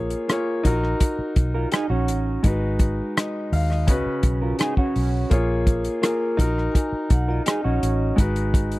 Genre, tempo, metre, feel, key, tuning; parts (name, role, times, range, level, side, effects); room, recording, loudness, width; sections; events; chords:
lush 1970s-style soul; 84 BPM; 4/4; straight; A4 = 437 Hz
clear concert grand piano; accompaniment; 0.0-8.8 s; C#3 to E#5; -25 LUFS; left 1 dB
vintage muted fingered electric bass; bass; 0.0-8.7 s; G#1 to D#2; -24 LUFS; equal
warm soul drum kit; drums; 0.1-8.8 s; hi-hat, kick drum, rim click; -20 LUFS; equal
mellow electric guitar; riff; 1.5-8.2 s; C#4 to A#4; -25 LUFS; right 3 dB; analog chorus
vibraphone with medium hard mallets; texture; 6.5-8.2 s; D#5 to A#5; -35 LUFS; left 2 dB
little or no reverb; dry, close 1970s-style studio recording; -20 LUFS; side -19 dB against mid
0.0-8.8 A section
0.0 A#m7; 0.6 F#6/A#; 2.4 G#m7; 3.9 C#7sus4; 5.3 A#m7; 6.4 F#6/A#; 8.2 G#m7